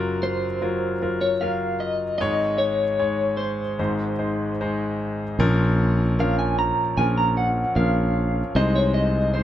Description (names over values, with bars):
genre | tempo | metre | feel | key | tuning
acoustic folk-pop ballad | 76 BPM | 4/4 | straight | unclear | A4 = 440 Hz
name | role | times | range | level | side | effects
bright grand piano | accompaniment | 0.0-9.4 s | Gb1 to Db5 | -24 LUFS | left 1 dB | none
electric guitar through a small old amp | melody | 0.2-9.4 s | C5 to Bb5 | -24 LUFS | equal | tremolo
sustaining fretless electric bass | bass | 5.4-9.4 s | Bb1 to C2 | -22 LUFS | right 1 dB | none
room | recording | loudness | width
light reverb | close, detailed microphones | -20 LUFS | side -11 dB against mid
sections
0.0-5.4 A section; 5.4-9.4 B section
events
none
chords
0.0 Gbmaj7; 2.2 Absus4; 3.8 Ab; 5.4 Bbm; 8.6 Ab/C